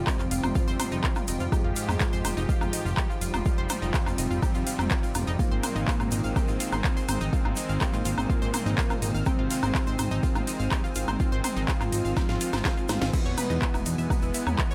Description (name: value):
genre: melodic techno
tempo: 124 BPM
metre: 4/4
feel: straight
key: unclear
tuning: A4 = 440 Hz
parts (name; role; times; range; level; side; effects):
- evolving wavetable pad; sustained chords; 0.0-14.7 s; Eb4 to Ab5; -43 LUFS; equal; none
- analog pluck; arpeggios; 0.0-14.7 s; C4 to F5; -39 LUFS; equal; chorus, sidechain pumping, tape echo
- brassy analog pad; stabs; 0.0-14.7 s; Ab2 to G4; -37 LUFS; equal; chorus, sidechain pumping, tape echo
- fat analog bass; bass; 0.0-14.6 s; E1 to Ab2; -32 LUFS; equal; sidechain pumping
- unison lead; melody; 0.1-14.5 s; Ab3 to F4; -37 LUFS; equal; subtle chorus, sidechain pumping, dub echo
- soft supersaw; second line; 0.1-14.5 s; Ab2 to F3; -43 LUFS; equal; none
- electronic kick drum; drums; 0.1-14.7 s; none; -29 LUFS; equal; overdrive, small room ambience
- techno drum kit; drums; 0.1-14.7 s; crash cymbal, handclaps, hi-hat, snare drum, toms, woodblock; -34 LUFS; equal; small room ambience
- tube shaker; percussion; 0.1-14.7 s; none; -44 LUFS; equal; none
room: light reverb, digital ambience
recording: none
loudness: -27 LUFS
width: mono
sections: 0.0-14.7 A section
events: drum fill 12.2-13.1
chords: 0.0 Fmadd9; 5.4 Ab; 13.1 E